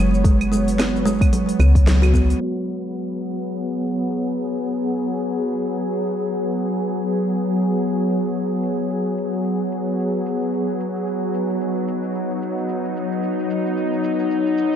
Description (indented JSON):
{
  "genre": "organic downtempo",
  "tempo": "111 BPM",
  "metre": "4/4",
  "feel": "swing 58% on 16ths",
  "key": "G# minor",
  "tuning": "A4 = 440 Hz",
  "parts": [
    { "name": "bowed-like drone", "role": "sustained chords", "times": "0.0-14.8 s", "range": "F#3 to C#5", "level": "-21 LUFS", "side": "left 1 dB", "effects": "built-in reverb, sidechain pumping" },
    { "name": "kalimba", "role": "arpeggios", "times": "0.0-2.3 s", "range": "F#3 to F#4", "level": "-22 LUFS", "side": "right 2 dB", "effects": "digital delay" },
    { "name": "woody FM bass", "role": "bass", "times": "0.0-2.3 s", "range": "F#1 to C#2", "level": "-18 LUFS", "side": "equal", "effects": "sidechain pumping" },
    { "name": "afro-pop drum kit", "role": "drums", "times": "0.1-14.8 s", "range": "claves, hi-hat, shaker, snare drum", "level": "-28 LUFS", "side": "equal", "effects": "low-pass filter on hats, small room ambience, low-pass filter on perc, low-pass filter on snare" },
    { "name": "electronic kick drum", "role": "drums", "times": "0.2-2.3 s", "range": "none", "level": "-18 LUFS", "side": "equal", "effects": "small room ambience" }
  ],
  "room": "moderate lush hall reverb, RT60 2.3 s",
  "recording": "dark, warm production, low-pass filter",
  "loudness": "-19 LUFS",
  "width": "side -9 dB against mid",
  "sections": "0.0-2.4 A section; 2.4-14.8 B section",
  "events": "band accent 1.9; filter sweep on synth drone 2.4-14.8; filter sweep 2.4-14.8",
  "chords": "0.0 G#m7"
}